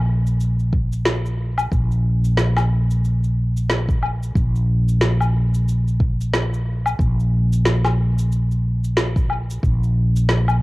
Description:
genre	organic downtempo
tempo	91 BPM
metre	4/4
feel	swing 58% on 16ths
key	unclear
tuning	A4 = 440 Hz
part	mellow fretless electric bass	bass	0.0-10.6 s	Bb1	-18 LUFS	equal	none
part	electronic cabasa, snare drum and woodblock	drums	0.3-10.6 s	none	-22 LUFS	left 1 dB	cassette tape
part	electronic kick drum	drums	0.7-9.8 s	none	-20 LUFS	equal	cassette tape
room	little or no reverb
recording	home recording on cassette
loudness	-17 LUFS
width	side -21 dB against mid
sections	0.0-10.6 A section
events	none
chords	none

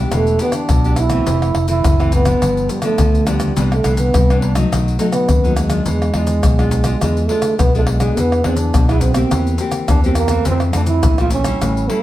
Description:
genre	samba and choro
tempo	104 BPM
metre	4/4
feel	straight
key	unclear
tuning	A4 = 438 Hz
part	breathy trombone	melody	0.0-12.0 s	G3 to F4	-19 LUFS	right 3 dB	plate reverb
part	nylon-string guitar	accompaniment	0.0-12.0 s	F2 to G#4	-22 LUFS	left 4 dB	none
part	fingered electric bass with an envelope filter	bass	0.0-11.9 s	E1 to F2	-18 LUFS	equal	none
part	maracas, surdo, pandeiro and tamborim	percussion	0.1-12.0 s	none	-18 LUFS	left 1 dB	none
room	wet studio reverb, RT60 0.7 s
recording	heard from further back in the room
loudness	-13 LUFS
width	side -14 dB against mid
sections	0.0-12.0 A section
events	none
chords	0.1 Em7; 1.3 Fmaj7; 2.4 G7; 3.6 Cmaj9; 4.7 B7; 5.9 E7b9; 8.2 E7; 9.3 C7/E; 10.5 Fmaj7

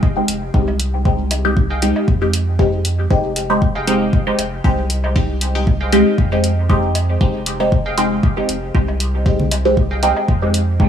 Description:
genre	dub techno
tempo	117 BPM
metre	4/4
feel	swing 54% on 16ths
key	F minor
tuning	A4 = 440 Hz
part	filtered dub chord stab	stabs	0.0-10.9 s	Ab3 to G4	-18 LUFS	equal	phaser, sidechain pumping, dub echo
part	electronic kick drum	drums	0.0-10.9 s	none	-16 LUFS	equal	overdrive
part	woodblock and congas	percussion	0.0-10.9 s	none	-29 LUFS	left 1 dB	overdrive, sidechain pumping on perc, dub echo
part	round analog bass	bass	0.3-10.9 s	F1 to F2	-20 LUFS	equal	sidechain pumping
part	electronic hi-hat	drums	0.3-10.7 s	none	-22 LUFS	equal	none
part	wavetable chord stab	riff	1.7-10.1 s	Ab4 to G5	-29 LUFS	right 2 dB	cassette tape, sidechain pumping, dub echo
room	light reverb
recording	none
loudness	-14 LUFS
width	side -8 dB against mid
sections	0.0-10.9 A section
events	none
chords	0.0 Fm9

